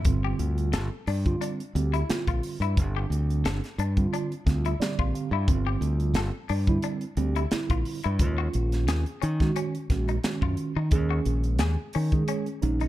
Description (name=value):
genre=electric jazz fusion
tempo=88 BPM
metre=4/4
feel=swing 54% on 16ths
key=unclear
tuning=A4 = 440 Hz
part: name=semi-hollow electric guitar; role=stabs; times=0.0-12.9 s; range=Db4 to A4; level=-35 LUFS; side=left 11 dB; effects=lush chorus
part: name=crisp fusion drum kit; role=drums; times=0.0-12.9 s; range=hi-hat, kick drum, snare drum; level=-27 LUFS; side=equal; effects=none
part: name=mellow tine electric piano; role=accompaniment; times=0.1-12.9 s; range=D3 to F5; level=-30 LUFS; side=right 4 dB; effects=medium stereo tremolo, phaser
part: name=modern bright fingered electric bass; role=bass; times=0.1-12.9 s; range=G1 to Eb3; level=-26 LUFS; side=equal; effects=none
room=light reverb, studio reverb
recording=dark, warm production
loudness=-24 LUFS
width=side -14 dB against mid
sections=0.1-12.9 A section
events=tine electric piano fill 4.5-5.5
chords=0.1 G7sus4; 8.2 Ebm11